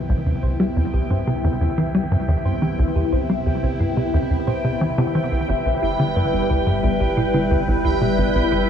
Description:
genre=ambient, sequencer-driven space music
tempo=89 BPM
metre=4/4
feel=straight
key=C major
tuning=A4 = 440 Hz
part: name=phased analog pad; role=sustained chords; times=0.0-8.7 s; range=C3 to B4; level=-23 LUFS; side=left 1 dB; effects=phaser, chorus
part: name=thumb-piano-like synth pluck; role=arpeggios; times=0.0-8.6 s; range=B3 to C5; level=-29 LUFS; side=right 4 dB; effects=chorus, auto-pan, cassette tape, tape echo
part: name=warm sub bass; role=bass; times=0.0-8.7 s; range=G1 to C2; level=-33 LUFS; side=equal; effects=none
part: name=bubbling stepped-filter texture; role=texture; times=0.0-8.7 s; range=G5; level=-30 LUFS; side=right 1 dB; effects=chorus, built-in reverb
part: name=tight sequencer bass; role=riff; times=0.1-8.7 s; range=G1 to G3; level=-20 LUFS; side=equal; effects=lush chorus, tape echo
room=wet cathedral reverb, RT60 5.3 s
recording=dreamy mix soaked in reverb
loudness=-18 LUFS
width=side -8 dB against mid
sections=0.0-8.7 A section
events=fade-in on synth arpeggio sound 0.0-8.7; fade-in on analog synth pad 0.0-8.7; fade-in on synth texture 0.0-8.7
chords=0.0 Cmaj7; 5.5 G6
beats=| 0.09 0.77 1.44 2.11 | 2.79 3.46 4.14 4.81 | 5.49 6.16 6.83 7.51 | 8.18

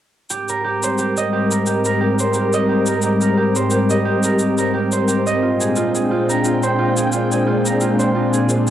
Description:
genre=sunset chillout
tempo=88 BPM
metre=4/4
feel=swing 56% on 16ths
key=Ab lydian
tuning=A4 = 440 Hz
part: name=soft string machine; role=sustained chords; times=0.5-8.7 s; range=Ab2 to G5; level=-17 LUFS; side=left 1 dB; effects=ensemble chorus, cassette tape
part: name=concert harp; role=arpeggios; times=0.3-8.7 s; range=F4 to Eb5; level=-21 LUFS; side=right 4 dB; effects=vintage 12-bit sampler grit, low-pass filter, cassette tape, analog delay
part: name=cabasa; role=drums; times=0.3-8.7 s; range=none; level=-26 LUFS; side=left 1 dB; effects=cassette tape
room=moderate spring reverb, RT60 2.0 s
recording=home recording on cassette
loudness=-15 LUFS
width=side -11 dB against mid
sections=0.3-8.7 A section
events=none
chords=0.3 Abmaj9; 5.4 Bb13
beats=| 0.30 0.98 1.67 2.35 | 3.03 3.71 4.39 5.08 | 5.76 6.44 7.12 7.80 | 8.48

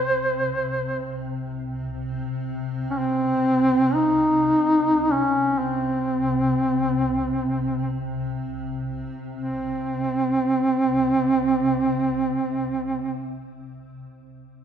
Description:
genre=caucasian folk, Caucasian lament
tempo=free time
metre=none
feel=none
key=C phrygian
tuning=A4 = 441 Hz
part: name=mellow duduk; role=melody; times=0.0-13.3 s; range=C4 to C5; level=-21 LUFS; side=right 1 dB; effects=none
part: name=granular cloud pad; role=drone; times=0.0-13.3 s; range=C3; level=-29 LUFS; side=left 2 dB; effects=built-in reverb
room=wet recital hall reverb, RT60 1.6 s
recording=none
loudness=-21 LUFS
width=side -8 dB against mid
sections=0.0-9.4 A section; 9.4-13.3 B section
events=slowing down 1.4-9.4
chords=none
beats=free time

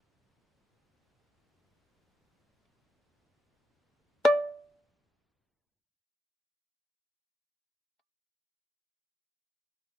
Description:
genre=japanese traditional, Japanese chamber music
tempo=free time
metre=none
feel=none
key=unclear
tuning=A4 = 440 Hz
part: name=shamisen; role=solo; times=0.0-8.0 s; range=D5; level=-20 LUFS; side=left 1 dB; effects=none
room=little or no reverb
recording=close, detailed microphones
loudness=-23 LUFS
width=side -11 dB against mid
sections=0.0-4.2 A section; 4.2-10.0 B section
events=slowing down 0.0-4.2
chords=none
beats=free time

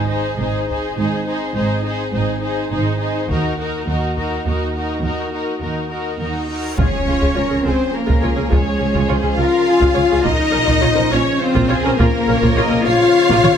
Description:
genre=cinematic, epic orchestral film score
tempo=104 BPM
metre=3/4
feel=straight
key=Db major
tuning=A4 = 440 Hz
part: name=warm symphonic violin section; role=melody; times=0.0-13.6 s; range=F4 to Eb5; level=-26 LUFS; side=left 2 dB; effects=none
part: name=warm symphonic violin section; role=second line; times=0.0-13.6 s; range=Gb4 to F5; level=-23 LUFS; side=left 2 dB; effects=none
part: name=warm symphonic viola section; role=accompaniment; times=0.0-13.5 s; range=Ab3 to Db5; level=-24 LUFS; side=right 1 dB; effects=none
part: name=dark French horn section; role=sustained chords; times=0.0-13.6 s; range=Ab3 to Gb4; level=-22 LUFS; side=left 6 dB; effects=none
part: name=warm symphonic cello section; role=bass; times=0.0-13.6 s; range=Eb2 to F4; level=-23 LUFS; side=right 2 dB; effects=none
part: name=warm symphonic double bass section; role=bass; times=0.0-13.5 s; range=Ab1 to Eb2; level=-22 LUFS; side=right 3 dB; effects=none
part: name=taiko ensemble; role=drums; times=0.7-13.6 s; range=none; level=-21 LUFS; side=equal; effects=none
part: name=reverse cymbal and impact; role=sound effects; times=6.5-8.5 s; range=none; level=-28 LUFS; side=equal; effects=none
part: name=warm trombone section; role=sustained chords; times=6.8-13.6 s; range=Db3 to Db4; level=-27 LUFS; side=right 4 dB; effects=none
room=light reverb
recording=none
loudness=-15 LUFS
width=side -8 dB against mid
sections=0.0-6.8 A section; 6.8-13.6 B section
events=build-up 0.0-6.8; reverse cymbal 6.5; impact 6.8-8.5; drum fill 13.3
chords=0.0 Ab; 3.3 Ebm; 6.8 Db; 10.3 Bbm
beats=0.40 0.98 | 1.56 2.14 2.72 | 3.30 3.88 4.46 | 5.04 5.63 6.21 | 6.79 7.37 7.95 | 8.53 9.11 9.68 | 10.26 10.84 11.42 | 12.00 12.58 13.16

